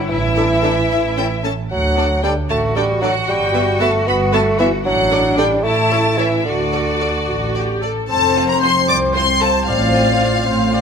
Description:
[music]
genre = cinematic, playful, whimsical film cue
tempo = 76 BPM (dotted quarters)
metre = 6/8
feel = straight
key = D major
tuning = A4 = 444 Hz
[part]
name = rich studio cello section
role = bass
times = 0.0-10.8 s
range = C2 to F#4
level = -22 LUFS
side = equal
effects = none
[part]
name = rich studio violin section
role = second line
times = 0.1-10.8 s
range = C4 to B5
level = -23 LUFS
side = left 1 dB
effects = none
[part]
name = mellow bassoon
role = accompaniment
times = 0.1-10.8 s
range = D3 to C4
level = -20 LUFS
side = right 1 dB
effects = none
[part]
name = rich studio double bass section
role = bass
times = 0.1-10.8 s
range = F1 to D2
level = -22 LUFS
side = right 2 dB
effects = none
[part]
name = rich studio violin section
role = melody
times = 0.4-10.8 s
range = C#5 to D6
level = -20 LUFS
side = left 4 dB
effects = none
[part]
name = rich studio viola section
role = accompaniment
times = 0.4-10.8 s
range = B3 to D5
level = -24 LUFS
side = equal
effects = none
[part]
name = mellow hollow large flute ensemble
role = second line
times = 8.1-10.8 s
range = F5 to D6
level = -24 LUFS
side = equal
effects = none
[part]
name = warm clarinet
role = second line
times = 8.1-10.8 s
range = C5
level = -26 LUFS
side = left 4 dB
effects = none
[part]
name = warm cor anglais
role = second line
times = 8.1-10.8 s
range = C5 to D5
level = -24 LUFS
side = right 1 dB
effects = none
[part]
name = warm French horn section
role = sustained chords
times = 8.1-10.8 s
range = C4 to C5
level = -23 LUFS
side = left 5 dB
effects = none
[sound]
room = light reverb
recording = close, detailed microphones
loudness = -14 LUFS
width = side -6 dB against mid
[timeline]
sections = 0.0-8.1 A section; 8.1-10.8 B section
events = none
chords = 0.1 Asus4; 0.9 A; 1.7 D; 3.3 Em/G; 4.8 D/A; 5.6 A5; 6.5 D; 8.1 F5; 9.7 F/A

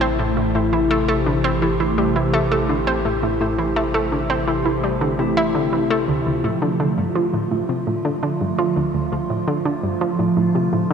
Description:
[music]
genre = ambient, sequencer-driven space music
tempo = 84 BPM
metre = 4/4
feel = straight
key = A minor, D minor from 6.1 s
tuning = A4 = 440 Hz
[part]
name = evolving wavetable pad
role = sustained chords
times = 0.0-10.9 s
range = C3 to G4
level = -22 LUFS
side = right 2 dB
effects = phaser, built-in reverb
[part]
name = concert harp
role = arpeggios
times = 0.0-10.9 s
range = A3 to F5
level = -26 LUFS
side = moving between left 8 dB and right 1 dB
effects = auto-pan, analog delay
[part]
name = analog pluck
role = riff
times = 0.0-10.9 s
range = D2 to E4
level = -21 LUFS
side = right 1 dB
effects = chorus, analog delay
[part]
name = warm sub bass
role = bass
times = 0.0-6.0 s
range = A1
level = -28 LUFS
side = equal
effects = none
[sound]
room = wet cathedral reverb, RT60 5.5 s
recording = in a vast, echoing space, cassette tape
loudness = -18 LUFS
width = side -7 dB against mid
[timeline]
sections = 0.0-6.1 A section; 6.1-10.9 B section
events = none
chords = 0.0 Am; 6.1 Dm

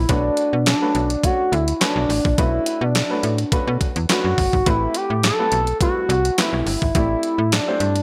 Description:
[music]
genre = early-eighties boogie funk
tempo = 105 BPM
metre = 4/4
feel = straight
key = B minor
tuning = A4 = 439 Hz
[part]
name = expressive portamento lead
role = melody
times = 0.0-8.0 s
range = D4 to A4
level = -23 LUFS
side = equal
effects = chorus
[part]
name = slap-like FM bass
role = bass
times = 0.0-8.0 s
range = G1 to B2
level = -24 LUFS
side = equal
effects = none
[part]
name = warm baby grand piano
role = accompaniment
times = 0.1-7.9 s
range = G3 to D5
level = -30 LUFS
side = equal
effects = none
[part]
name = crisp 8-bit digital drum machine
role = drums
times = 0.1-8.0 s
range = handclaps, hi-hat, kick drum, snare drum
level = -24 LUFS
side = equal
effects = gated reverb
[sound]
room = light reverb, digital ambience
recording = bright 1980s-style digital production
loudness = -19 LUFS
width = mono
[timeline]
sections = 0.0-8.0 A section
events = none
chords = 0.1 Bm9; 4.7 Am9

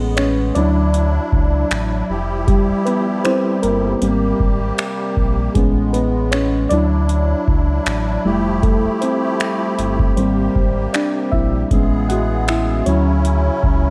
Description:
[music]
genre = contemporary R&B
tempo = 78 BPM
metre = 4/4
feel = swing 54% on 16ths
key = unclear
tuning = A4 = 442 Hz
[part]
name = mellow FM electric piano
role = accompaniment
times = 0.0-13.9 s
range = F#3 to F#5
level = -21 LUFS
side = equal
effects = chorus
[part]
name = musette accordion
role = sustained chords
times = 0.0-13.9 s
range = A2 to G#4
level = -27 LUFS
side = equal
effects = none
[part]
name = sub bass with octave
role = bass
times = 0.0-13.9 s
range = F1 to D2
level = -22 LUFS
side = equal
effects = none
[part]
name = booming analog drum machine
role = drums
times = 0.2-13.8 s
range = finger snaps, hi-hat, kick drum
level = -21 LUFS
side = equal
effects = none
[sound]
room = light reverb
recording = echo-heavy mix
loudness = -17 LUFS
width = mono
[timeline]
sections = 0.0-13.9 A section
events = FM electric piano solo 0.0-13.9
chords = 0.0 Amaj9; 0.6 Dmaj9; 2.1 Fmaj9; 4.0 G#maj9; 5.6 Amaj9; 6.7 Dmaj9; 8.2 Fmaj9; 10.2 G#maj9; 11.7 Amaj9; 12.9 Dmaj9

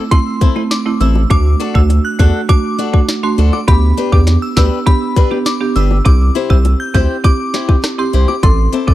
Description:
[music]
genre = dancehall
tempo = 101 BPM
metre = 4/4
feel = straight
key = unclear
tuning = A4 = 440 Hz
[part]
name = buzzing marimba with hard mallets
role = accompaniment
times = 0.0-8.9 s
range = A3 to A4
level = -19 LUFS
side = right 5 dB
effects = sidechain pumping
[part]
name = picked swing-style acoustic guitar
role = arpeggios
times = 0.0-8.9 s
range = C4 to C5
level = -22 LUFS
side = left 9 dB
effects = none
[part]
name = glassy synth bell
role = melody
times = 0.1-8.9 s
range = B5 to G6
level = -21 LUFS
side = equal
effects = chorus, digital delay
[part]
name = island pop drum kit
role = drums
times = 0.1-8.9 s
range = hi-hat, kick drum, rim click, snare drum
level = -12 LUFS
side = equal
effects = none
[part]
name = bongos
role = percussion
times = 0.1-8.9 s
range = none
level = -26 LUFS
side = left 10 dB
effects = none
[part]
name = saturated sub bass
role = bass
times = 1.0-8.9 s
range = G1 to E2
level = -12 LUFS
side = equal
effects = none
[sound]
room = little or no reverb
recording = dark, warm production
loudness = -10 LUFS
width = side -14 dB against mid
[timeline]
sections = 0.0-8.9 A section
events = none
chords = 0.0 Am; 1.3 D; 3.7 G/D; 6.1 C; 8.4 Am

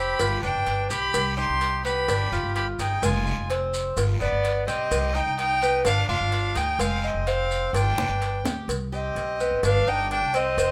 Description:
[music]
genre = latin, Cuban son and guajira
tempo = 127 BPM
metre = 4/4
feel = straight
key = unclear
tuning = A4 = 440 Hz
[part]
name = dark fiddle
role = melody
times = 0.0-10.7 s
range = D5 to C6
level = -29 LUFS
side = equal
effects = none
[part]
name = bright trumpet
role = second line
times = 0.0-10.7 s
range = B3 to G4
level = -33 LUFS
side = equal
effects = none
[part]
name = Cuban tres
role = arpeggios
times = 0.0-10.7 s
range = Ab3 to B4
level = -31 LUFS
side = equal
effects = none
[part]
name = upright bass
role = bass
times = 0.0-10.7 s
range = F1 to D2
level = -30 LUFS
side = equal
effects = none
[part]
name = cowbell and bongos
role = percussion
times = 0.2-10.7 s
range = none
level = -33 LUFS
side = equal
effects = none
[part]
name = guiro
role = percussion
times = 0.2-8.7 s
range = none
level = -42 LUFS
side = equal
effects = none
[part]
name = maracas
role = percussion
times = 0.2-10.7 s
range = none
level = -41 LUFS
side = equal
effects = none
[sound]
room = light reverb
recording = none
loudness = -24 LUFS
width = mono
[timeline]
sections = 0.0-8.7 A section; 8.7-10.7 B section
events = drum fill 8.0-8.7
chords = 0.2 G7; 1.1 Cm; 2.1 G7; 3.0 Fm; 4.0 G7; 4.9 Cm; 5.9 G5; 6.8 Fm; 7.7 G7; 8.7 Cm; 9.6 G

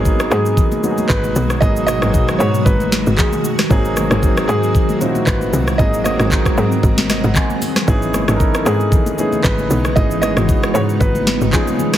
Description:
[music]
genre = amapiano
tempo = 115 BPM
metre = 4/4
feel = swing 55% on 16ths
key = G# minor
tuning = A4 = 441 Hz
[part]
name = warm concert grand piano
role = accompaniment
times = 0.0-12.0 s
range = A#2 to G#5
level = -21 LUFS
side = right 1 dB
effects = none
[part]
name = granular cloud pad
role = sustained chords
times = 0.0-12.0 s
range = B2 to G#4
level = -22 LUFS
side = equal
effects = built-in reverb, sidechain pumping
[part]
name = tight log drum bass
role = bass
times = 0.0-11.5 s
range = G#1 to G#2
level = -19 LUFS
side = equal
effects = none
[part]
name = afro-pop drum kit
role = drums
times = 0.1-12.0 s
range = handclaps, hi-hat, kick drum, rim click, shaker, snare drum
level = -17 LUFS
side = equal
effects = none
[part]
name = warm baby grand piano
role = melody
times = 0.3-11.9 s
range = G#4 to D#5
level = -22 LUFS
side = equal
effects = ping-pong delay
[part]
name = congas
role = percussion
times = 0.6-11.9 s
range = none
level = -25 LUFS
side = left 2 dB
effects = none
[sound]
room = light reverb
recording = heavily compressed radio sound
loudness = -13 LUFS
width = side -12 dB against mid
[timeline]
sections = 0.0-12.0 A section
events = grand piano fill 6.8-7.9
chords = 0.0 G#m9; 3.7 G#7; 7.9 C#m9/G#

